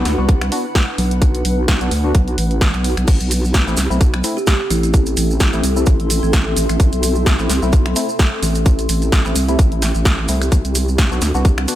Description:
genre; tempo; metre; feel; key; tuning
bass house; 129 BPM; 4/4; swing 56% on 16ths; A dorian; A4 = 440 Hz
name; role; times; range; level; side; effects
percussive organ stab; stabs; 0.0-11.8 s; A3 to F#4; -25 LUFS; left 2 dB; analog chorus, sidechain pumping, ping-pong delay
vowel-sweep wobble bass; bass; 0.0-11.7 s; A1 to D2; -18 LUFS; equal; chorus, sidechain pumping
granular cloud pad; texture; 0.0-11.8 s; C4 to C6; -25 LUFS; left 1 dB; built-in reverb, sidechain pumping
big-room dance drum kit; drums; 0.1-11.8 s; crash cymbal, finger snaps, hi-hat, snare drum; -22 LUFS; equal; none
electronic kick drum; drums; 0.3-11.6 s; none; -13 LUFS; equal; none
maracas; percussion; 3.1-11.8 s; none; -27 LUFS; right 4 dB; none
kalimba; melody; 4.4-6.4 s; C4 to G4; -28 LUFS; right 2 dB; ping-pong delay
room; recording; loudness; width
little or no reverb; none; -14 LUFS; side -13 dB against mid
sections
0.0-11.8 A section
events
filter sweep on wobble bass 0.0-11.8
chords
0.0 Am

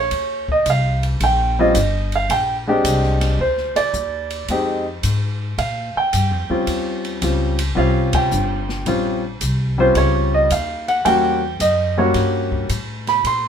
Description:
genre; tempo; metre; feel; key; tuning
jazz piano trio; 110 BPM; 4/4; swing 68% on 8ths; unclear; A4 = 437 Hz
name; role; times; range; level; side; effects
warm grand piano; melody; 0.0-13.5 s; G3 to C6; -18 LUFS; right 1 dB; none
upright bass; bass; 0.0-13.5 s; G1 to Bb2; -21 LUFS; left 1 dB; none
open jazz drum kit; drums; 0.1-13.4 s; hi-hat, kick drum, ride cymbal, snare drum; -28 LUFS; equal; none
room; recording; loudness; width
moderate studio reverb, RT60 0.7 s; minimal, uncompressed stereo recording; -16 LUFS; side -8 dB against mid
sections
0.0-13.5 A section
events
band accent 8.0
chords
0.1 Eb13; 2.3 Bb13; 4.5 Fm7; 5.6 Bb6; 6.7 Eb13; 11.1 Edim7

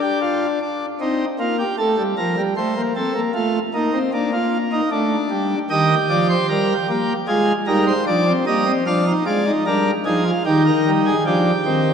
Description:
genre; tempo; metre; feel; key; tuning
classical, baroque-style 4-part fugue for pipe organ; 76 BPM; 4/4; straight; Eb major; A4 = 440 Hz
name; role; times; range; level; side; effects
pipe organ, principal chorus; solo; 0.0-11.9 s; Eb3 to F5; -17 LUFS; equal; none
room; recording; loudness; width
wet church reverb, RT60 3.0 s; dark, warm production; -17 LUFS; side -7 dB against mid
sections
0.0-11.9 A section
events
none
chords
0.0 Bb/D (rootless); 1.0 Cm7; 2.6 Adim; 4.1 Bb; 5.7 Eb; 7.3 Fm7; 8.9 Ddim/F; 10.5 Eb

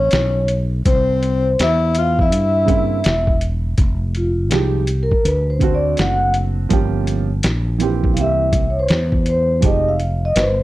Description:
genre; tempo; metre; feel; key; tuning
hip hop, jazz-hop; 82 BPM; 4/4; swing 63% on 16ths; unclear; A4 = 437 Hz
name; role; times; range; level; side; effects
vibraphone with soft mallets; melody; 0.0-10.6 s; F4 to F#5; -19 LUFS; equal; none
breathy tenor saxophone; second line; 0.0-3.4 s; C4 to F4; -25 LUFS; left 8 dB; none
mellow fretless electric bass; bass; 0.0-10.6 s; E1 to G2; -19 LUFS; equal; none
trip hop sampler-style drum kit; drums; 0.1-10.6 s; hi-hat, kick drum, snare drum; -19 LUFS; equal; none
dark concert grand piano; accompaniment; 2.7-9.9 s; Db3 to G4; -22 LUFS; right 8 dB; none
room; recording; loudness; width
studio reverb; dry, close 1970s-style studio recording; -15 LUFS; side -16 dB against mid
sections
0.0-3.8 A section; 3.8-10.6 B section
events
vibraphone solo 3.8-10.6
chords
0.0 N.C.; 0.9 C; 3.8 Fm9; 5.2 D7; 6.7 Gm7b5; 8.2 C7; 9.6 Fm9

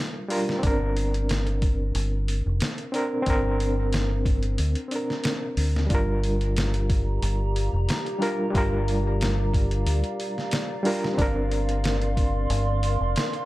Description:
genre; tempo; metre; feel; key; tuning
trip hop; 91 BPM; 4/4; straight; unclear; A4 = 440 Hz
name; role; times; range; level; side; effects
overdriven reed electric piano; accompaniment; 0.0-13.5 s; G3 to Bb4; -28 LUFS; equal; fast tremolo, harmonic tremolo, low-pass filter, tape echo
trip hop sampler-style drum kit; drums; 0.3-13.5 s; hi-hat, kick drum, snare drum; -27 LUFS; equal; none
deep dub fingered electric bass; bass; 0.6-13.1 s; F1 to D2; -25 LUFS; equal; none
warbly tape-like pad; sustained chords; 6.6-13.5 s; G4 to C6; -31 LUFS; equal; chorus, built-in reverb
room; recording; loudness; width
little or no reverb; none; -22 LUFS; side -17 dB against mid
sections
0.0-13.5 A section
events
none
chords
0.0 Gm7; 0.6 Bbadd9; 5.9 Gm7; 11.2 Bbadd9

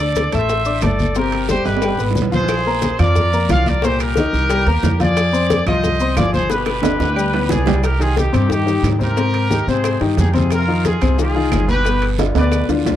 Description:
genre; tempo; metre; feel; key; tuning
latin, salsa; 180 BPM; 4/4; straight; C minor; A4 = 440 Hz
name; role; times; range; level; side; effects
bright trumpet section; melody; 0.0-12.7 s; D4 to F5; -21 LUFS; equal; none
bright upright piano; accompaniment; 0.0-13.0 s; Bb2 to D6; -20 LUFS; left 4 dB; none
upright bass; bass; 0.0-13.0 s; G1 to Ab2; -19 LUFS; right 1 dB; none
bongos; percussion; 0.0-13.0 s; none; -25 LUFS; left 5 dB; none
congas; percussion; 0.0-13.0 s; none; -24 LUFS; left 1 dB; none
guiro; percussion; 0.2-13.0 s; none; -36 LUFS; right 12 dB; none
maracas; percussion; 0.2-13.0 s; none; -35 LUFS; left 14 dB; none
timbales; percussion; 0.2-12.9 s; none; -26 LUFS; right 10 dB; none
claves; percussion; 0.3-12.7 s; none; -32 LUFS; right 9 dB; none
room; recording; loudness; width
little or no reverb; dry, close 1970s-style studio recording; -14 LUFS; side -11 dB against mid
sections
0.0-7.8 A section; 7.8-13.0 B section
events
drum fill 1.7-2.5, 6.5-7.8, 12.2-13.0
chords
0.0 D5; 1.2 Gsus4; 1.8 G; 2.5 Bb7; 3.8 Cm7; 5.2 Fm7; 6.5 G; 7.8 Cm; 9.2 Abmaj7; 10.5 Fm7; 11.9 G7

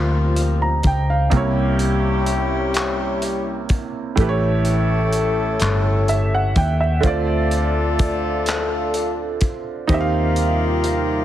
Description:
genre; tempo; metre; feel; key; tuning
slow six-eight R&B; 42 BPM (dotted quarters); 6/8; straight; unclear; A4 = 440 Hz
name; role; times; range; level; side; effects
warm concert grand piano; accompaniment; 0.0-11.2 s; A2 to Bb5; -23 LUFS; right 4 dB; none
dark horn section; stabs; 0.0-11.2 s; F3 to Bb4; -24 LUFS; left 3 dB; none
vintage muted fingered electric bass; bass; 0.0-11.2 s; G1 to Eb2; -20 LUFS; equal; none
cloth-damped thuddy drum kit; drums; 0.4-11.1 s; handclaps, hi-hat, kick drum; -22 LUFS; equal; none
chorused pulse-width pad; sustained chords; 9.9-11.2 s; C3 to F4; -26 LUFS; right 1 dB; none
room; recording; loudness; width
light reverb, small room reverb; heavily compressed radio sound, multiband compression; -17 LUFS; side -12 dB against mid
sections
0.0-11.2 A section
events
none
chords
0.0 Eb69; 1.3 C7b9; 4.2 A7; 7.0 Dm7; 9.9 Eb69

